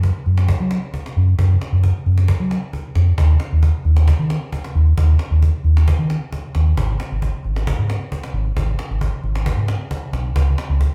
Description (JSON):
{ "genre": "calypso", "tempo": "134 BPM", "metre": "4/4", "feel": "straight", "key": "unclear", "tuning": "A4 = 440 Hz", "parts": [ { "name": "fingered electric bass", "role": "bass", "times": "0.0-10.9 s", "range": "G#1 to F#3", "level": "-18 LUFS", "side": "equal", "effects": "none" }, { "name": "cajon", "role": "drums", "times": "0.0-10.9 s", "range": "none", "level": "-28 LUFS", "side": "equal", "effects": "none" } ], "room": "light reverb", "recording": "band playing live in one room", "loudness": "-18 LUFS", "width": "mono", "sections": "0.0-10.9 A section", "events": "none", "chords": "none" }